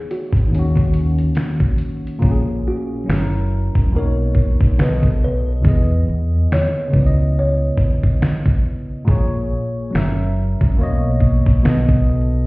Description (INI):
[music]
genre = lo-fi hip hop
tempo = 70 BPM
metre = 4/4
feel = swing 57% on 16ths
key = unclear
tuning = A4 = 441 Hz
[part]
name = kalimba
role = melody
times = 0.0-8.6 s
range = F#4 to C#5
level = -27 LUFS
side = equal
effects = low-pass filter
[part]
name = bell-like tine electric piano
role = accompaniment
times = 0.0-12.5 s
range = A#2 to E5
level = -20 LUFS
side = equal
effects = cassette tape, low-pass filter
[part]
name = dusty soul sampler-style drum kit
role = drums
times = 0.1-12.1 s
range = finger snaps, hi-hat, kick drum, snare drum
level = -16 LUFS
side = equal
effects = none
[part]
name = deep dub fingered electric bass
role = bass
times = 0.3-12.5 s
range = E1 to E2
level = -18 LUFS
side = equal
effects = none
[sound]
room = light reverb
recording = heard muffled through a wall, stone room reverb, vinyl crackle, EQ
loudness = -15 LUFS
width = side -23 dB against mid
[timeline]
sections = 0.0-2.2 A section; 2.2-12.5 B section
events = hi-hats muted 2.2-12.5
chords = 0.0 Emaj7; 0.5 D#m7; 2.2 A#m7; 3.1 F#7; 3.9 Bmaj9; 4.8 B7; 5.6 Emaj7; 6.9 C#m9; 9.1 A#m7; 9.9 F#7; 10.8 Bmaj9; 11.6 B7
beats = 0.51 1.36 | 2.22 3.08 3.93 4.79 | 5.65 6.51 7.36 8.22 | 9.08 9.93 10.79 11.65